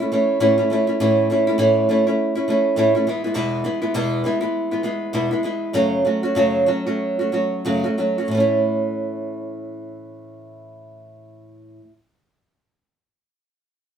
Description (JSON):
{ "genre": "pop", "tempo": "87-103 BPM", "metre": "4/4", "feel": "swing 60% on 16ths", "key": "A major", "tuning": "A4 = 440 Hz", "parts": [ { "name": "nylon-string guitar", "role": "accompaniment", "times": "0.0-11.9 s", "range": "E2 to F#4", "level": "-18 LUFS", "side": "right 1 dB", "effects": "none" } ], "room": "moderate studio reverb, RT60 0.5 s", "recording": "band playing live in one room", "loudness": "-18 LUFS", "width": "side -8 dB against mid", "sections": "0.0-8.3 A section; 8.3-11.1 B section", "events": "slowing down 3.3-8.3", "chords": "0.0 A; 3.1 E; 5.7 F#m; 8.3 A" }